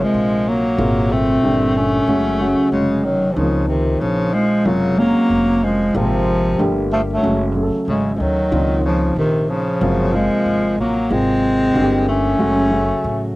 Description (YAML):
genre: hip hop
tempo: 93 BPM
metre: 4/4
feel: swing 64% on 16ths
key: unclear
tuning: A4 = 440 Hz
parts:
  - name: mellow bass clarinet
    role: melody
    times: 0.0-13.3 s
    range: Eb3 to Db4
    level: -18 LUFS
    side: equal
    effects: cassette tape
  - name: breathy tenor saxophone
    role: second line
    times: 0.0-13.3 s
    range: C3 to A3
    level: -23 LUFS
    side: left 2 dB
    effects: none
  - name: dark grand piano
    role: accompaniment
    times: 0.0-13.4 s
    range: Bb2 to A4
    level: -21 LUFS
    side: equal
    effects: none
  - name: upright bass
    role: bass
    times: 0.0-13.4 s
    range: F1 to D2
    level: -24 LUFS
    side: equal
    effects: none
room: moderate booth ambience, RT60 0.2 s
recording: home recording on cassette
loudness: -15 LUFS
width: side -19 dB against mid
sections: 0.0-3.4 A section; 3.4-13.4 B section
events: none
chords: 0.0 Gbmaj9#11; 0.8 Ab13; 1.4 Gmadd9; 2.1 Gbmadd9; 3.4 Dbmaj13; 4.7 Gbmaj9#11; 5.9 Ab69; 6.6 Gmadd9; 7.2 Gbmadd9; 8.5 Dbmaj13; 9.8 Gbmaj9#11; 11.1 Ab13; 11.8 Gmadd9; 12.4 Gbmadd9